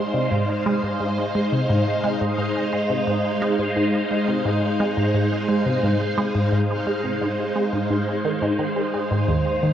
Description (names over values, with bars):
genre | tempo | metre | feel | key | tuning
ambient, sequencer-driven space music | 87 BPM | 4/4 | straight | Ab major | A4 = 440 Hz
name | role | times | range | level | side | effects
phased string machine | sustained chords | 0.0-9.7 s | Eb3 to F5 | -23 LUFS | equal | ensemble chorus, phaser
resonant blip pluck | riff | 0.0-9.7 s | Eb2 to Ab3 | -22 LUFS | equal | phaser, tape echo
wind-like tuned noise texture | texture | 0.0-9.7 s | C5 | -30 LUFS | right 2 dB | built-in reverb
room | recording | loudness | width
wet scoring stage reverb, RT60 2.1 s | worn, warbling old tape, cassette tape, warbly pitch drift | -20 LUFS | side -10 dB against mid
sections
0.0-9.7 A section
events
none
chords
0.0 Ab6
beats
0.32 | 1.01 1.70 2.39 3.08 | 3.77 4.46 5.15 5.83 | 6.53 7.21 7.90 8.59 | 9.28